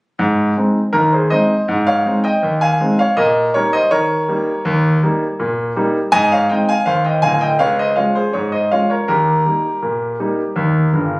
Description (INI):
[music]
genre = ragtime piano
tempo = 81 BPM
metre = 2/4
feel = straight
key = Ab major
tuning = A4 = 442 Hz
[part]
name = clear concert grand piano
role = solo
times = 0.2-11.2 s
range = D1 to Ab5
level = -13 LUFS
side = equal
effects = none
[sound]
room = light reverb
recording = recorded on a phone in the room, club ambience, compression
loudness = -13 LUFS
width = side -26 dB against mid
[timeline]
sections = 0.2-11.2 A section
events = grand piano fill 10.9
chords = 0.2 Ab; 3.2 Eb7/Bb; 4.6 Eb7; 6.1 Ab; 7.6 Db; 9.1 Eb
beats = | 0.20 0.94 | 1.69 2.43 | 3.17 3.91 | 4.65 5.39 | 6.12 6.86 | 7.60 8.34 | 9.08 9.82 | 10.56